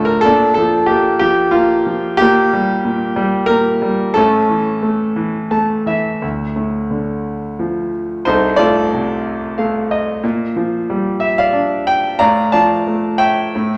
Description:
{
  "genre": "classical, lyrical solo piano",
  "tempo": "91 BPM",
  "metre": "3/4",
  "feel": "rubato",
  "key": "D minor from 6.2 s",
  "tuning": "A4 = 435 Hz",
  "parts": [
    { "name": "bright grand piano", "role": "solo", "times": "0.0-13.8 s", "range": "C2 to Bb5", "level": "-16 LUFS", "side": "equal", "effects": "none" }
  ],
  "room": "moderate scoring stage reverb, RT60 1.6 s",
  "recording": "none",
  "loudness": "-16 LUFS",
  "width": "mono",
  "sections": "0.0-6.2 A section; 6.2-13.8 B section",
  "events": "grand piano fill 5.2-6.2, 9.3-10.2",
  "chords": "0.2 Bb; 2.2 Gm/Bb; 4.2 A; 6.2 Dm; 8.3 F7/C; 10.2 Bb6; 12.2 Dm/A"
}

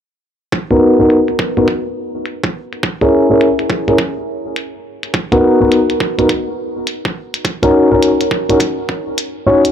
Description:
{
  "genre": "glitch hop",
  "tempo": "104 BPM",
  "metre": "4/4",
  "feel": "swing 63% on 16ths",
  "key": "unclear",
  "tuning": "A4 = 440 Hz",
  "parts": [
    { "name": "electronic hi-hat", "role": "drums", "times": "0.5-9.7 s", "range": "none", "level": "-23 LUFS", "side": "left 2 dB", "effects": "low-pass filter on hats, small room ambience" },
    { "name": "electronic kick drum", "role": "drums", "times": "0.5-9.0 s", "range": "none", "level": "-19 LUFS", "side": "right 1 dB", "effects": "overdrive, high-pass filter on kick, small room ambience, high-pass filter on room" },
    { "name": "dark grand piano", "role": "stabs", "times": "0.7-9.6 s", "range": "B3 to C#5", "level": "-12 LUFS", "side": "equal", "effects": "sidechain pumping, low-pass filter, digital delay" }
  ],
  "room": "moderate plate reverb, RT60 2.9 s",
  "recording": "dark, warm production",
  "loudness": "-12 LUFS",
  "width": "side -9 dB against mid",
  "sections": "0.5-9.7 A section",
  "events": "none",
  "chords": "0.5 Bmaj7; 2.8 C#m6; 5.1 Bmaj7; 7.4 F#6/C#"
}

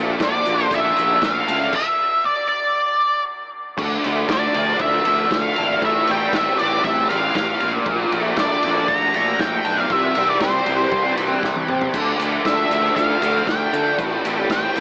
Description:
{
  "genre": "psychedelic rock",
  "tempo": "118 BPM",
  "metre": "4/4",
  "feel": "straight",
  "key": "D minor",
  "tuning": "A4 = 440 Hz",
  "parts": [
    { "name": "string machine, full ensemble", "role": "sustained chords", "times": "0.0-14.8 s", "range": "E3 to G5", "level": "-31 LUFS", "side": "equal", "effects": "none" },
    { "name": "biting overdriven guitar", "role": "riff", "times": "0.0-14.8 s", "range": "A2 to D4", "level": "-23 LUFS", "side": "equal", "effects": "flanger, dub echo" },
    { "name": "fuzz picked electric bass", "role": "bass", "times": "0.0-14.8 s", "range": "G#1 to D3", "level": "-25 LUFS", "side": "equal", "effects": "overdrive" },
    { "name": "octave-fuzz lead guitar", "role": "melody", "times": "0.2-14.8 s", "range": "C5 to Bb5", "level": "-20 LUFS", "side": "equal", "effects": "wah, distortion, dub echo" },
    { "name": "crunchy breakbeat drum kit", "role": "drums", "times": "0.2-14.8 s", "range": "crash cymbal, kick drum, ride cymbal, snare drum, toms", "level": "-24 LUFS", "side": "equal", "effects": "none" },
    { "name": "tube shaker", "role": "percussion", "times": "0.2-1.7, 11.9-14.8 s", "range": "none", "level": "-47 LUFS", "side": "equal", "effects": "none" }
  ],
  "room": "light reverb, small room ambience",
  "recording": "echo-heavy mix, AM radio sound",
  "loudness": "-16 LUFS",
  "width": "side -38 dB against mid",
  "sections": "0.0-3.8 A section; 3.8-14.8 A section",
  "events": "drum fill 11.4-11.9",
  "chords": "0.0 Bbmaj7; 1.7 N.C.; 3.8 Dmadd9; 5.8 Am7; 7.6 Bbmaj7; 9.9 C; 11.9 Dmadd9; 14.0 Am7"
}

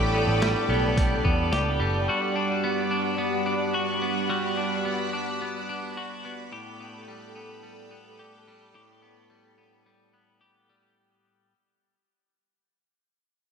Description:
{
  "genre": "dream pop",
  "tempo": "108 BPM",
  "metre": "4/4",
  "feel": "straight",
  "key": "unclear",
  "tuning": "A4 = 438 Hz",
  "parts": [
    { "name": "string machine, full ensemble", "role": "sustained chords", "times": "0.0-10.9 s", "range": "G3 to B5", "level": "-29 LUFS", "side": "right 2 dB", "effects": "ensemble chorus" },
    { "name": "clean electric guitar", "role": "arpeggios", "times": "0.0-11.5 s", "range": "A2 to G4", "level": "-28 LUFS", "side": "left 2 dB", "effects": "wide subtle chorus, tape echo" },
    { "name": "vintage muted picked electric bass", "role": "bass", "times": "0.0-2.1 s", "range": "F#1 to E2", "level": "-26 LUFS", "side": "equal", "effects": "none" },
    { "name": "boom bap sampler-style drum kit", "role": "drums", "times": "0.4-1.7 s", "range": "hi-hat, kick drum, snare drum", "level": "-26 LUFS", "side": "equal", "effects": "none" }
  ],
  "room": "moderate lush hall reverb, RT60 2.1 s",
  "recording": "none",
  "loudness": "-23 LUFS",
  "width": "side -6 dB against mid",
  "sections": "0.0-11.0 A section",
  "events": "fade-out 0.0-11.0",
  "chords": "0.0 A9sus4; 2.1 Gmaj7; 6.5 A9sus4"
}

